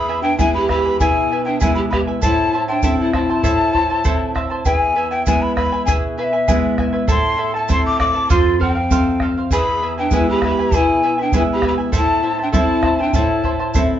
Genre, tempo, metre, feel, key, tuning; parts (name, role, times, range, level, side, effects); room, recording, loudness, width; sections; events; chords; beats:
andean folk, Andean ensemble; 99 BPM; 2/4; straight; A4 = 439 Hz
breathy bright large quena; melody; 0.0-13.7 s; E5 to D6; -20 LUFS; left 2 dB; plate reverb
mellow pan flute; second line; 0.0-4.3, 8.3-13.8 s; C4 to G#4; -21 LUFS; equal
charango; accompaniment; 0.0-14.0 s; E4 to A5; -23 LUFS; right 2 dB
nylon-string guitar; accompaniment; 0.0-14.0 s; E2 to F4; -22 LUFS; equal
bombo; percussion; 0.4-13.9 s; -20 LUFS; right 1 dB
tube shaker; percussion; 0.4-13.9 s; -34 LUFS; right 5 dB
wet small room reverb, RT60 0.5 s; heard from further back in the room, nothing above 7.6 kHz; -15 LUFS; side -10 dB against mid
0.0-4.6 A section; 4.6-14.0 A section
0.0 E; 2.2 Am; 4.6 E; 7.1 Am; 8.3 F; 9.5 E; 11.9 Am
0.38 | 0.99 1.60 | 2.21 2.82 | 3.43 4.04 | 4.65 5.26 | 5.87 6.47 | 7.08 7.69 | 8.29 8.90 | 9.51 10.11 | 10.72 11.32 | 11.93 12.54 | 13.14 13.75